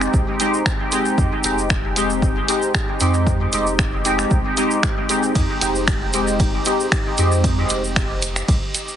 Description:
dub techno; 115 BPM; 4/4; straight; A4 = 440 Hz
resonant sweep polysynth; stabs; 0.0-7.5 s; Ab3 to G4; -20 LUFS; equal; chorus, phaser, sidechain pumping, dub echo
warm sub bass; bass; 0.0-8.6 s; F1 to F2; -23 LUFS; equal; sidechain pumping
punchy analog drum machine; drums; 0.0-8.9 s; finger snaps, hi-hat, ride cymbal; -25 LUFS; right 1 dB; dub echo
tube shaker; percussion; 0.0-9.0 s; -28 LUFS; right 2 dB
electronic kick drum; drums; 0.1-8.6 s; -21 LUFS; equal
light reverb, digital ambience; heavily compressed radio sound, nothing above 11.0 kHz; -16 LUFS; side -10 dB against mid
0.0-9.0 A section
0.0 Fm7

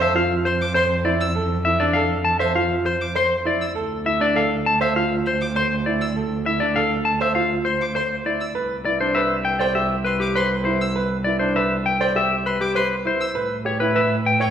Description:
classical, minimalist pattern music; 100 BPM; 4/4; straight; C major; A4 = 440 Hz
clean electric guitar; melody; 0.0-14.5 s; G4 to A5; -21 LUFS; left 3 dB
bright concert grand piano; arpeggios; 0.0-14.5 s; D4 to C#5; -24 LUFS; right 3 dB
rich violin; arpeggios; 0.0-14.5 s; F5 to E6; -31 LUFS; left 1 dB
warm cello; bass; 0.0-14.5 s; C2 to A2; -26 LUFS; right 2 dB
wet scoring stage reverb, RT60 1.5 s; recorded in a church or concert hall; -18 LUFS; side -9 dB against mid
0.0-14.5 A section
0.0 Fmaj7(no3); 3.8 Dm7; 8.6 Cmaj7; 13.4 A7

